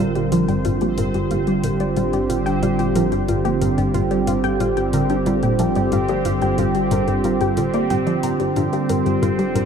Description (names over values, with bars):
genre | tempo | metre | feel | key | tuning
ambient, sequencer-driven space music | 91 BPM | 4/4 | straight | G minor | A4 = 435 Hz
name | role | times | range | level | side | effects
sweeping resonant pad | sustained chords | 0.0-9.7 s | D3 to Bb4 | -20 LUFS | right 1 dB | chorus
warbly dusty pluck | arpeggios | 0.0-9.7 s | F4 to Bb5 | -27 LUFS | moving between left 7 dB and right 2 dB | chorus, auto-pan, tape echo
analog pluck | riff | 0.0-9.6 s | G2 to D4 | -23 LUFS | equal | chorus, tape echo
round analog bass | bass | 0.0-9.7 s | G1 | -30 LUFS | left 1 dB | none
bubbling stepped-filter texture | texture | 0.0-9.7 s | C4 to C5 | -28 LUFS | right 3 dB | chorus, built-in reverb
booming analog drum machine | percussion | 0.2-9.7 s | hi-hat, toms | -30 LUFS | left 4 dB | tape echo
room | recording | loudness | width
light reverb | none | -17 LUFS | side -7 dB against mid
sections
0.0-9.7 A section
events
filter sweep on synth arpeggio sound 0.0-9.7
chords
0.0 Gm7